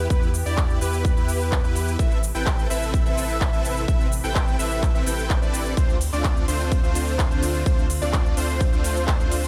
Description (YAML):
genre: EDM, festival progressive house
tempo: 127 BPM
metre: 4/4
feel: straight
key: A minor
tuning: A4 = 440 Hz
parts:
  - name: lush unison pad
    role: sustained chords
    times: 0.0-9.5 s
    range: C3 to B4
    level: -38 LUFS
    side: equal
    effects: chorus, phaser, sidechain pumping
  - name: unison lead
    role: arpeggios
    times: 0.0-9.5 s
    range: B4 to G5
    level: -33 LUFS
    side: equal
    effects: sidechain pumping, digital delay
  - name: supersaw chords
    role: riff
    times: 0.0-9.5 s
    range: A3 to G5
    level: -31 LUFS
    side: equal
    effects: ensemble chorus, sidechain pumping, digital delay
  - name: saturated sub bass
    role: bass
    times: 0.0-9.5 s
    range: A1 to E2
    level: -29 LUFS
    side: equal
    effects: sidechain pumping
  - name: big-room dance drum kit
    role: drums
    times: 0.1-9.5 s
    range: handclaps, hi-hat, ride cymbal, shaker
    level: -33 LUFS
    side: equal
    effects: overdrive, studio reverb
  - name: electronic kick drum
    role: drums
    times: 0.1-9.2 s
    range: none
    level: -23 LUFS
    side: equal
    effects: studio reverb
room: little or no reverb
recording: none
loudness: -22 LUFS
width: mono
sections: 0.0-9.5 A section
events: none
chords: 0.0 Em; 2.0 Amadd9; 5.8 Dm7